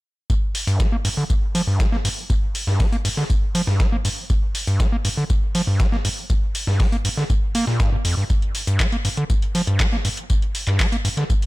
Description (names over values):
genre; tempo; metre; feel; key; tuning
acid house; 120 BPM; 4/4; straight; G minor; A4 = 439 Hz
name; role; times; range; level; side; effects
overdriven acid bass; riff; 0.3-11.3 s; F2 to Bb3; -22 LUFS; equal; distortion, sidechain pumping, digital delay
dusty soul sampler-style drum kit; drums; 0.3-11.4 s; hi-hat, snare drum, tambourine; -32 LUFS; left 2 dB; overdrive, sidechain pumping on perc, high-pass filter on perc, sidechain pumping on hats, high-pass filter on hats, high-pass filter on snare, high-pass filter on room
electronic kick drum; drums; 0.3-11.4 s; none; -20 LUFS; equal; none
booming analog drum machine; drums; 0.5-11.5 s; handclaps, hi-hat; -27 LUFS; equal; none
room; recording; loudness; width
little or no reverb; none; -18 LUFS; side -20 dB against mid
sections
0.3-11.5 A section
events
none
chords
none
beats
| 0.30 0.80 1.30 1.80 | 2.30 2.80 3.30 3.80 | 4.30 4.80 5.30 5.80 | 6.30 6.80 7.30 7.80 | 8.30 8.80 9.30 9.80 | 10.30 10.80 11.30